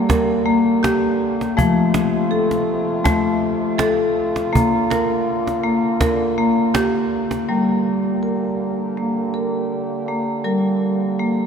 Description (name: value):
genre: world meditative, meditative tuned percussion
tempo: 81 BPM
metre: 4/4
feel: straight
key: G minor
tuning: A4 = 435 Hz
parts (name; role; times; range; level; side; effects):
- warm French horn section; sustained chords; 0.0-11.5 s; C3 to G4; -24 LUFS; right 2 dB; none
- marimba with medium mallets; arpeggios; 0.0-11.5 s; F3 to Bb4; -18 LUFS; left 1 dB; none
- cajon; percussion; 0.1-7.5 s; none; -24 LUFS; right 2 dB; none
room: wet cathedral reverb, RT60 6.2 s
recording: in a vast, echoing space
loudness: -17 LUFS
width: side -6 dB against mid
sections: 0.0-7.5 A section; 7.5-11.5 B section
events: none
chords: 0.0 Gm; 1.6 F; 4.5 Bb; 7.5 Gm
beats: 0.10 0.83 | 1.57 2.31 3.05 3.79 | 4.53 5.26 6.00 6.74 | 7.48 8.22 8.96 9.70 | 10.45 11.19